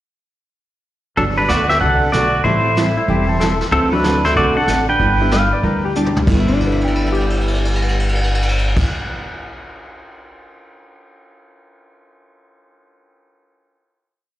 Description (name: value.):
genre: country, western swing.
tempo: 188 BPM.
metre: 4/4.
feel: swing 64% on 8ths.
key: G major.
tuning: A4 = 440 Hz.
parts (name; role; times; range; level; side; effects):
pedal steel guitar; melody; 1.2-5.9 s; C4 to G5; -17 LUFS; equal; slapback echo.
hollow-body jazz guitar; second line; 1.2-5.9 s; E3 to D4; -26 LUFS; right 1 dB; slapback echo.
picked steel-string acoustic guitar; accompaniment; 1.2-9.3 s; D3 to A4; -22 LUFS; right 3 dB; slapback echo.
upright bass; bass; 1.2-8.8 s; E1 to D2; -20 LUFS; equal; none.
vintage brush drum kit; drums; 1.2-10.3 s; brushed snare drum, crash cymbal, hi-hat, kick drum, ride cymbal, snare drum, toms; -23 LUFS; equal; none.
tack piano; accompaniment; 2.4-9.1 s; G2 to G6; -25 LUFS; left 3 dB; slapback echo.
clean lap steel guitar; second line; 3.0-8.8 s; D4 to F5; -22 LUFS; left 4 dB; slapback echo.
room: light reverb.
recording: live gig heard through the venue's PA, recital hall reverb.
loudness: -14 LUFS.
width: side -14 dB against mid.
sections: 1.2-6.3 A section; 6.3-8.8 final chord.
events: drum fill 6.0-6.3, 6.4-8.7.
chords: 1.2 Gmaj9; 2.4 Am7; 3.7 D9; 5.0 G6.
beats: | 1.17 1.49 1.81 2.13 | 2.44 2.76 3.08 3.40 | 3.72 4.04 4.36 4.68 | 5.00 5.32 5.63 5.95 | 6.27 6.59 6.91 7.23 | 7.55 7.87 8.19 8.51.